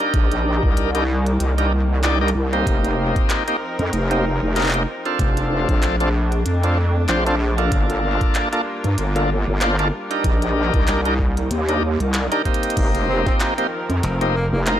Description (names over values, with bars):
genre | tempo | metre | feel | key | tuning
glitch hop | 95 BPM | 4/4 | swing 56% on 16ths | C dorian | A4 = 440 Hz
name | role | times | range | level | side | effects
clear studio string section | sustained chords | 0.0-14.8 s | C3 to Bb4 | -29 LUFS | equal | sidechain pumping
bright tonewheel organ | stabs | 0.0-14.8 s | Bb3 to D5 | -22 LUFS | equal | overdrive, slow rotary speaker, sidechain pumping, analog delay
glitchy drum kit | drums | 0.0-14.8 s | crash cymbal, handclaps, hi-hat, snare drum | -27 LUFS | equal | studio reverb
wobble bass | bass | 0.1-14.8 s | F1 to G2 | -20 LUFS | equal | chorus
electronic kick drum | drums | 0.1-13.4 s | none | -20 LUFS | equal | studio reverb
breathy tenor saxophone | melody | 13.1-14.6 s | Bb3 to C4 | -28 LUFS | equal | analog delay
glassy slap bass | bass | 14.0-14.5 s | F1 | -21 LUFS | equal | tube saturation
room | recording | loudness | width
little or no reverb | dry, gritty hardware recording | -17 LUFS | side -11 dB against mid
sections
0.0-14.8 A section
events
drum fill 12.5-12.8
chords
0.1 Cm7; 2.7 F7sus4; 5.2 Bbmaj7; 7.7 Gm7; 10.2 Cm7; 12.8 F7sus4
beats
| 0.14 0.77 1.40 2.03 | 2.67 3.30 3.93 4.56 | 5.19 5.82 6.46 7.09 | 7.72 8.35 8.98 9.61 | 10.24 10.88 11.51 12.14 | 12.77 13.40 14.03 14.67